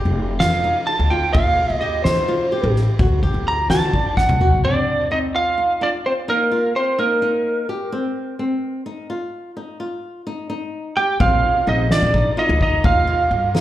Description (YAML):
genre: progressive instrumental, band music in an uneven meter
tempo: 256 BPM (eighths)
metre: 7/8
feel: straight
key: unclear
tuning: A4 = 443 Hz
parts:
  - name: flamenco guitar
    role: arpeggios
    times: 0.0-13.6 s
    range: C4 to G4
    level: -26 LUFS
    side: left 2 dB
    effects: none
  - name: upright bass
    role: bass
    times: 0.0-4.5, 11.2-13.5 s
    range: F1 to Eb3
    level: -21 LUFS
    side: equal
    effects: none
  - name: soft-mallet drum kit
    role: drums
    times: 0.2-4.6, 11.2-13.6 s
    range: kick drum, ride cymbal, snare drum, toms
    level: -21 LUFS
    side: equal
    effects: none
  - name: lightly driven lead guitar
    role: melody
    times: 0.4-7.7, 11.0-13.6 s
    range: Bb4 to Bb5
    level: -19 LUFS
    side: right 2 dB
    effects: digital delay
  - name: semi-hollow electric guitar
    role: second line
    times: 4.6-7.7, 11.0-13.6 s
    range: Bb3 to G4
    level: -26 LUFS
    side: left 2 dB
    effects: wide subtle chorus
room: light reverb, small room ambience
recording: live gig heard through the venue's PA, club reverb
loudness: -16 LUFS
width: side -13 dB against mid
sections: 0.0-4.6 A section; 4.6-13.6 B section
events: lead electric guitar solo 0.0-4.6; drum fill 4.2-4.6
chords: 0.0 F7sus2; 1.3 Cm/Eb; 3.0 D; 4.6 Csus24; 6.3 Ebsus2; 7.9 Cmadd11; 9.6 Ebadd9; 11.2 Bbsus2; 12.8 Ebsus2